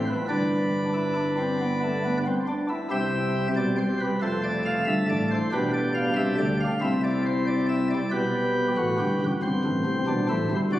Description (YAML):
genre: classical, baroque-style 4-part fugue for pipe organ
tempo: 46 BPM (dotted quarters)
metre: 6/8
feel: straight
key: C major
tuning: A4 = 440 Hz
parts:
  - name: pipe organ, sparkling flutes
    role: solo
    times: 0.0-10.8 s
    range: F1 to F5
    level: -23 LUFS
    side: equal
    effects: none
room: wet church reverb, RT60 3.2 s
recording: recorded on a phone in the room, studio reverb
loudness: -23 LUFS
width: side -14 dB against mid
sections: 0.0-2.9 A section; 2.9-8.1 B section; 8.1-10.8 C section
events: none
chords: 0.3 G; 2.9 C; 4.2 Dm7/F; 5.5 G7/B; 6.8 C; 8.1 G/B; 9.4 Am7/G